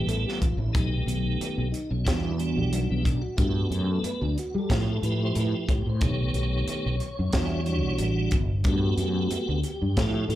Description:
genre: electric jazz fusion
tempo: 91 BPM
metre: 4/4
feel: swing 55% on 16ths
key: G lydian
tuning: A4 = 440 Hz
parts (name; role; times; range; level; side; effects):
- tonewheel organ; accompaniment; 0.0-10.4 s; D#3 to C#5; -30 LUFS; right 1 dB; slow rotary speaker, chorus vibrato, slapback echo
- fretless electric bass; bass; 0.0-10.4 s; G1 to G3; -26 LUFS; equal; ensemble chorus
- crisp fusion drum kit; drums; 0.1-10.4 s; hi-hat, kick drum, snare drum; -28 LUFS; equal; none
room: small room ambience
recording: live gig heard through the venue's PA, club reverb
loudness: -24 LUFS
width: side -14 dB against mid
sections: 0.0-10.4 A section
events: none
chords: 0.0 Fmaj9/A; 0.7 B7b13; 2.1 Em9; 3.4 Gmaj9; 4.7 Fmaj9/A; 6.0 B7b13; 7.3 Em9; 8.7 Gmaj9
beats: 0.07 | 0.73 1.40 2.06 2.72 | 3.38 4.04 4.70 5.36 | 6.02 6.68 7.34 8.00 | 8.65 9.31 9.97

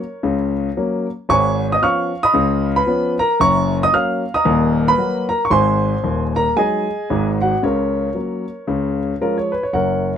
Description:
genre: jazz, stride piano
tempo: 114 BPM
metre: 4/4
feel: swing 58% on 8ths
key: F# major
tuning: A4 = 440 Hz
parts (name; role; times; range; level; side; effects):
- dark grand piano; solo; 0.0-10.2 s; D#1 to E#6; -16 LUFS; equal; none
room: light reverb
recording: close, detailed microphones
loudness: -16 LUFS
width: side -8 dB against mid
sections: 0.0-9.7 A section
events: none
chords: 0.0 F#; 1.3 C#7/G#; 2.3 C#13; 3.4 F#; 4.5 D#m; 5.5 G#7; 7.6 F#/C#; 8.7 C#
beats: 0.23 0.76 | 1.29 1.81 2.34 2.87 | 3.40 3.93 4.45 4.98 | 5.51 6.04 6.57 7.09 | 7.62 8.15 8.67 9.20 | 9.73

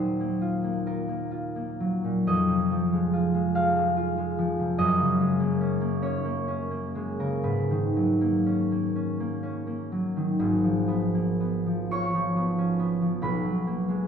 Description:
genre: classical, solo harp piece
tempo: 38-50 BPM (dotted quarters)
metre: 6/8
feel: rubato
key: G# dorian from 4.8 s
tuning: A4 = 440 Hz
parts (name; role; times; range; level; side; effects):
- concert harp; solo; 0.0-14.1 s; G#1 to C#6; -24 LUFS; equal; none
room: wet scoring stage reverb, RT60 2.0 s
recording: heard from further back in the room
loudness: -24 LUFS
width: side -7 dB against mid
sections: 0.0-10.4 A section; 10.4-14.1 B section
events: none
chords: 0.0 Ebmadd9; 2.3 Fm7; 4.8 F#add9; 7.5 G#m11; 10.4 G#m6; 13.2 B5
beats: 0.86 | 2.27 3.55 | 4.78 6.02 | 7.45 8.96 | 10.40 11.91 | 13.23

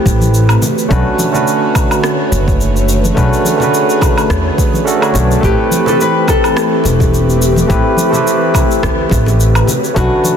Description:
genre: sunset chillout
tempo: 106 BPM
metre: 4/4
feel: swing 55% on 16ths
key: unclear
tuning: A4 = 440 Hz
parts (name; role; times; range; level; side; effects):
- barky tine electric piano; accompaniment; 0.0-10.4 s; A3 to C#5; -15 LUFS; equal; overdrive, auto-pan, tape echo
- airy breathy pad; sustained chords; 0.0-10.4 s; D3 to C#5; -17 LUFS; right 1 dB; chorus
- upright bass; bass; 0.1-10.1 s; E1 to E2; -14 LUFS; equal; none
- electronic cabasa, woodblock and rim click; drums; 0.1-10.4 s; none; -20 LUFS; equal; overdrive
- electronic kick drum; drums; 0.1-10.1 s; none; -16 LUFS; equal; overdrive
- congas and bongos; percussion; 0.2-10.4 s; none; -22 LUFS; left 2 dB; none
- nylon-string guitar; melody; 5.4-10.4 s; F#4 to B4; -17 LUFS; left 3 dB; tape echo
room: moderate lush hall reverb, RT60 2.1 s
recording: dense, heavily limited modern master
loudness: -10 LUFS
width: side -8 dB against mid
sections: 0.0-10.4 A section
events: none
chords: 0.0 Am9; 0.6 Bm9; 5.4 Am9; 9.7 Bm9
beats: 0.34 | 0.91 1.47 2.04 2.60 | 3.17 3.73 4.30 4.87 | 5.43 6.00 6.57 7.13 | 7.70 8.26 8.83 9.39 | 9.96

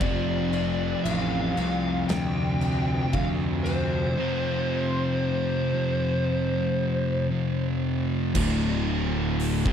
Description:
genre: stoner and doom metal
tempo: 58 BPM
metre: 4/4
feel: straight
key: unclear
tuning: A4 = 442 Hz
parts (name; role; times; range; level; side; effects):
- fuzz lead guitar; melody; 0.0-7.3 s; C5 to G5; -30 LUFS; left 1 dB; distortion, tape echo
- distorted electric guitar; riff; 0.0-9.7 s; D2 to C4; -31 LUFS; equal; distortion
- thick fuzz guitar; riff; 0.0-9.7 s; D2 to C4; -29 LUFS; left 6 dB; distortion
- thick fuzz guitar; riff; 0.0-9.7 s; D2 to C4; -30 LUFS; right 8 dB; distortion
- fuzz picked electric bass; bass; 0.0-9.7 s; D1 to D2; -29 LUFS; right 1 dB; overdrive
- oversized low-tuned drum kit; drums; 0.0-9.7 s; crash cymbal, hi-hat, kick drum, snare drum; -33 LUFS; equal; none
room: little or no reverb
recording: none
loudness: -23 LUFS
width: side -8 dB against mid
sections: 0.0-8.4 A section; 8.4-9.7 B section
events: none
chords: 0.0 F5; 8.4 D5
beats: | 0.01 1.06 2.10 3.14 | 4.19 5.23 6.28 7.32 | 8.36 9.40

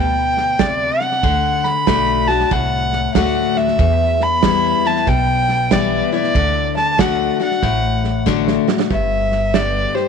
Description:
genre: honky-tonk and classic country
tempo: 94 BPM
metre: 4/4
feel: swing 65% on 8ths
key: G major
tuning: A4 = 441 Hz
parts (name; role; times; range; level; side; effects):
- dark fiddle; melody; 0.0-10.1 s; C5 to B5; -18 LUFS; right 1 dB; none
- picked steel-string acoustic guitar; accompaniment; 0.0-10.1 s; E2 to G4; -20 LUFS; left 12 dB; none
- upright bass; bass; 0.0-9.8 s; G1 to E2; -22 LUFS; right 1 dB; none
- natural country drum kit; drums; 0.4-10.0 s; hi-hat, kick drum, snare drum; -21 LUFS; right 7 dB; none
room: light reverb, small room ambience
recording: 1960s-style stereo with parts hard left and right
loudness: -14 LUFS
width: side -6 dB against mid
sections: 0.0-8.9 A section; 8.9-10.1 B section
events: drum fill 8.3-8.9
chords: 0.0 G; 1.2 D; 3.8 Em; 6.3 D; 8.9 G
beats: 0.60 | 1.24 1.88 2.52 3.15 | 3.79 4.43 5.07 5.71 | 6.35 6.99 7.63 8.27 | 8.91 9.55

